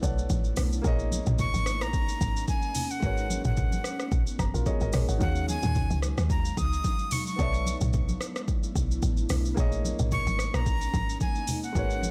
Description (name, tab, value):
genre	amapiano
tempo	110 BPM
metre	4/4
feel	swing 55% on 16ths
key	unclear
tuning	A4 = 441 Hz
part	warm baby grand piano	accompaniment	0.0-12.1 s	Eb3 to Bb5	-40 LUFS	equal	none
part	ethereal airy pad	sustained chords	0.0-12.1 s	Gb3 to F5	-40 LUFS	equal	ensemble chorus, built-in reverb
part	woody log drum bass	bass	0.0-12.1 s	Gb1 to Eb2	-31 LUFS	equal	none
part	afro-pop drum kit	drums	0.0-12.1 s	hi-hat, kick drum, rim click, shaker, toms	-32 LUFS	equal	overdrive
part	congas	percussion	0.0-12.1 s	none	-38 LUFS	equal	none
part	breathy bright jazz flute	melody	1.4-12.1 s	Gb5 to Eb6	-36 LUFS	equal	digital delay
room	little or no reverb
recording	none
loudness	-28 LUFS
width	mono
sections	0.0-12.1 A section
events	grand piano fill 4.1-5.2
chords	0.0 Bm11; 0.8 Bbm7; 3.0 Abm11; 5.2 Ebm11; 7.4 Bm11; 9.6 Bbm7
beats	0.30 | 0.84 1.39 1.94 2.48 | 3.03 3.57 4.12 4.66 | 5.21 5.75 6.30 6.84 | 7.39 7.94 8.48 9.03 | 9.57 10.12 10.66 11.21 | 11.75